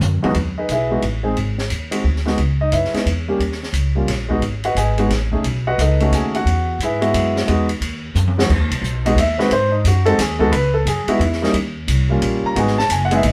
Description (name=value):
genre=jazz piano trio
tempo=177 BPM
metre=3/4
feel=swing 63% on 8ths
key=E major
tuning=A4 = 440 Hz
part: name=upright bass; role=bass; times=0.0-13.3 s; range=F#1 to G#2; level=-22 LUFS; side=equal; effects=none
part: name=open jazz drum kit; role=drums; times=0.0-13.3 s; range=crash cymbal, hi-hat, kick drum, ride cymbal, snare drum, toms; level=-28 LUFS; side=equal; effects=none
part: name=warm concert grand piano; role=melody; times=0.2-13.3 s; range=E2 to A#5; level=-21 LUFS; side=equal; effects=none
room=moderate studio reverb, RT60 0.7 s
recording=band playing live in one room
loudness=-18 LUFS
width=mono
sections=0.4-8.5 A section; 8.5-13.3 B section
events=drum fill 0.0-0.4, 8.2-8.5; grand piano solo 8.5-13.3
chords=0.4 Emaj7; 1.4 G#7(no3); 2.4 C#m7; 3.4 D#7(no3); 4.4 G#m7; 5.4 B7; 6.5 Emaj7; 8.5 Emaj7 (rootless); 9.5 G#7; 10.5 C#m7; 11.5 D#7; 12.6 G#m7